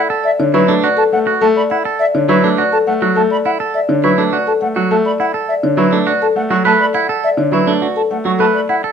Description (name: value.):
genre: classical, minimalist pattern music.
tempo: 103 BPM.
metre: 3/4.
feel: straight.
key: D major.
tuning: A4 = 440 Hz.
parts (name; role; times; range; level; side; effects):
marimba with soft mallets; melody; 0.0-8.9 s; A4 to F#5; -17 LUFS; left 5 dB; none.
clean electric guitar; arpeggios; 0.0-8.9 s; D4 to B4; -17 LUFS; right 6 dB; none.
concert flute; arpeggios; 0.2-8.8 s; E5 to C#6; -20 LUFS; equal; none.
bright baby grand piano; accompaniment; 0.4-8.6 s; D3 to A3; -17 LUFS; right 1 dB; none.
room: moderate large studio reverb, RT60 1.1 s.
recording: close, detailed microphones.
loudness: -12 LUFS.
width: side -7 dB against mid.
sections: 0.0-8.9 A section.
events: none.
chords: 0.0 Dadd9.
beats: | 0.54 1.12 1.70 | 2.29 2.87 3.45 | 4.03 4.62 5.20 | 5.78 6.36 6.95 | 7.53 8.11 8.70.